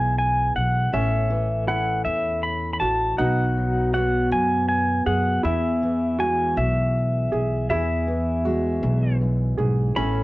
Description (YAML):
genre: acoustic folk duo or small band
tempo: 53 BPM (dotted quarters)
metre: 6/8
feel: straight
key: E major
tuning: A4 = 440 Hz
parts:
  - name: pedal steel guitar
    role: melody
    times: 0.0-10.2 s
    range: E5 to B5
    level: -24 LUFS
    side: equal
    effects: none
  - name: fingerpicked steel-string acoustic guitar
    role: accompaniment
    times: 0.0-10.2 s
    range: E2 to A4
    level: -27 LUFS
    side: left 1 dB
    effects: none
  - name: upright bass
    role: bass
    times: 0.0-10.2 s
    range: A1 to F#2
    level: -24 LUFS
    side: equal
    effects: none
  - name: felt-muted upright piano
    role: arpeggios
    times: 0.9-10.2 s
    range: C#4 to G#4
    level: -29 LUFS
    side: right 2 dB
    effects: none
room: light reverb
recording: worn, warbling old tape, cassette tape, warbly pitch drift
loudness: -20 LUFS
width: side -19 dB against mid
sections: 0.9-10.0 A section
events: none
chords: 0.0 E; 0.9 A; 3.2 B; 5.4 E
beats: | 0.93 2.06 | 3.19 4.31 | 5.44 6.57 | 7.70 8.83 | 9.96